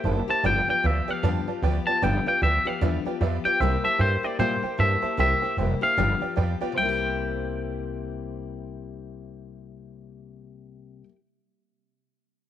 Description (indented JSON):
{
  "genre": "rock",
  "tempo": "152 BPM",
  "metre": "4/4",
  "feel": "swing 61% on 8ths",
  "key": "C mixolydian",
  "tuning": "A4 = 440 Hz",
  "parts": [
    { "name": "twangy electric guitar", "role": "melody", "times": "0.0-11.0 s", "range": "C5 to A5", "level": "-25 LUFS", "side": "left 1 dB", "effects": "spring reverb, tape echo" },
    { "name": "honky-tonk upright piano", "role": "accompaniment", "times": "0.0-11.0 s", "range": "B4 to A5", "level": "-32 LUFS", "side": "right 12 dB", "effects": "none" },
    { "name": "picked steel-string acoustic guitar", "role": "accompaniment", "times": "0.0-11.2 s", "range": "G2 to G4", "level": "-31 LUFS", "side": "left 10 dB", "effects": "none" },
    { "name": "upright bass", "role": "bass", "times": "0.0-11.0 s", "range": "F1 to Bb2", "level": "-26 LUFS", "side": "right 1 dB", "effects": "none" }
  ],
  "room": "small room ambience",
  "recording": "1960s-style stereo with parts hard left and right",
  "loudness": "-22 LUFS",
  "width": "side -11 dB against mid",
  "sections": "0.0-6.8 A section; 6.8-9.9 B section",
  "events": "none",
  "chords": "0.4 G7; 3.6 C7; 6.0 G7; 6.8 C7"
}